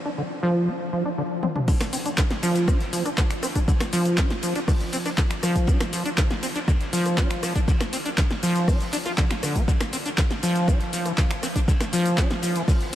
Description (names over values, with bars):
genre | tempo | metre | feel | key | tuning
acid house | 120 BPM | 4/4 | straight | D minor | A4 = 440 Hz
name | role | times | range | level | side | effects
acid bass, saw | riff | 0.1-12.9 s | D3 to F4 | -25 LUFS | equal | lush chorus, analog delay
punchy analog drum machine | drums | 1.4-12.9 s | cabasa, crash cymbal, finger snaps, handclaps, hi-hat, rim click, snare drum, toms | -29 LUFS | left 1 dB | overdrive, studio reverb
crunchy breakbeat drum kit | drums | 1.7-12.9 s | hi-hat, ride cymbal, snare drum | -39 LUFS | equal | none
electronic kick drum | drums | 1.7-12.8 s | none | -22 LUFS | equal | overdrive, studio reverb
room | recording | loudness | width
moderate huge ambient reverb, RT60 7.3 s | dreamy mix soaked in reverb | -21 LUFS | side -12 dB against mid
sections
0.0-1.7 A section; 1.7-12.9 B section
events
break 0.0-1.7; drum fill 1.4; drop 1.7-12.9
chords
none